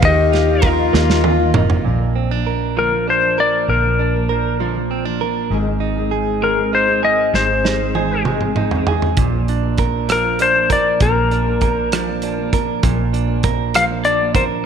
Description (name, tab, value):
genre	six-eight pop ballad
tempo	66 BPM (dotted quarters)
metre	6/8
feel	straight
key	unclear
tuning	A4 = 442 Hz
part	clean lap steel guitar	melody	0.0-14.4 s	Bb4 to F5	-18 LUFS	left 4 dB	tape echo
part	clear French horn section	second line	0.0-1.9 s	Eb4 to G4	-20 LUFS	left 12 dB	none
part	direct-recorded clean electric guitar	accompaniment	0.0-14.7 s	Ab2 to Bb4	-21 LUFS	right 12 dB	none
part	fingerpicked steel-string acoustic guitar	arpeggios	0.0-14.7 s	Ab2 to Bb4	-26 LUFS	left 12 dB	none
part	vintage muted fingered electric bass	bass	0.0-14.6 s	F1 to Eb2	-21 LUFS	equal	none
part	modern studio drum kit	drums	0.0-1.8, 7.3-14.5 s	hi-hat, kick drum, ride cymbal, rim click, snare drum, toms	-19 LUFS	right 2 dB	none
room	light reverb, small room ambience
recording	1960s-style stereo with parts hard left and right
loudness	-14 LUFS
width	side -7 dB against mid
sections	0.0-1.9 A section; 1.9-14.7 B section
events	drum fill 0.9-1.9, 7.3-9.2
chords	0.0 Ebsus2; 1.9 Bb; 5.5 Ab; 9.2 Bb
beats	| 0.03 0.93 | 1.85 2.77 | 3.69 4.60 | 5.51 6.42 | 7.34 8.26 | 9.18 10.09 | 11.01 11.92 | 12.83 13.74 | 14.65